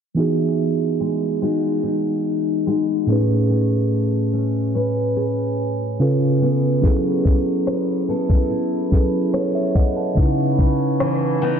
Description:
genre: contemporary R&B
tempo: 72 BPM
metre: 4/4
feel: straight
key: E major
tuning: A4 = 437 Hz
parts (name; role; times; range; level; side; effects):
- mellow tine electric piano; accompaniment; 0.1-11.6 s; A2 to A5; -19 LUFS; right 2 dB; none
- picked steel-string acoustic guitar; arpeggios; 0.2-11.6 s; C#3 to B4; -24 LUFS; left 3 dB; tape echo
- smooth R&B drum kit; drums; 6.8-11.6 s; hi-hat, kick drum, rim click; -19 LUFS; left 1 dB; none
room: moderate lush hall reverb, RT60 2.7 s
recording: dreamy mix soaked in reverb, low-pass filter, nothing above 10.7 kHz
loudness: -17 LUFS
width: side -7 dB against mid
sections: 0.2-11.6 A section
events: filter sweep 0.2-11.6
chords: 0.2 Emaj9; 3.1 Amaj9; 6.0 C#7b13; 6.8 F#m11; 10.2 C#m9

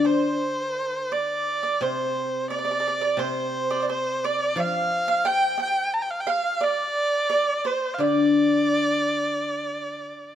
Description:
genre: chinese traditional, Chinese chamber ensemble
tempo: 87 BPM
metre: 4/4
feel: rubato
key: unclear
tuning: A4 = 439 Hz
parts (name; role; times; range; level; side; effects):
- rich erhu; melody; 0.0-10.3 s; C5 to Bb5; -25 LUFS; equal; none
- mandolin; second line; 0.0-10.3 s; C5 to G5; -27 LUFS; right 4 dB; none
- guzheng; accompaniment; 0.0-10.1 s; C3 to F3; -25 LUFS; left 3 dB; none
room: moderate recital hall reverb, RT60 1.6 s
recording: close, detailed microphones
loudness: -22 LUFS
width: side -10 dB against mid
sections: 0.0-10.3 A section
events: none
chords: none

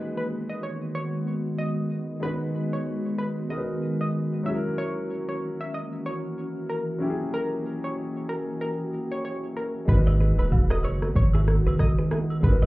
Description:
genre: afrobeats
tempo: 94 BPM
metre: 4/4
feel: swing 58% on 16ths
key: G# minor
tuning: A4 = 440 Hz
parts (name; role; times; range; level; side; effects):
- clear concert grand piano; accompaniment; 0.0-12.7 s; F#3 to B4; -32 LUFS; left 1 dB; none
- glassy FM pad; sustained chords; 0.0-12.7 s; D#3 to D#5; -30 LUFS; equal; ensemble chorus, built-in reverb
- analog pluck; melody; 0.2-12.7 s; A#4 to E5; -34 LUFS; equal; chorus, digital delay
- punchy sub bass; bass; 9.9-12.7 s; D#1 to G#1; -22 LUFS; equal; none
- deep house drum kit; drums; 9.9-12.7 s; kick drum, rim click, shaker; -23 LUFS; equal; none
- direct-recorded clean electric guitar; riff; 10.1-12.7 s; E4 to D#5; -36 LUFS; right 2 dB; digital delay
- agogo bells and woodblock; percussion; 10.1-12.7 s; none; -42 LUFS; right 2 dB; none
room: little or no reverb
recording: heard muffled through a wall, club reverb, EQ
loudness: -24 LUFS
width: side -19 dB against mid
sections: 0.0-12.7 A section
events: none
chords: 0.0 G#m7; 4.5 F#7; 9.9 G#m7

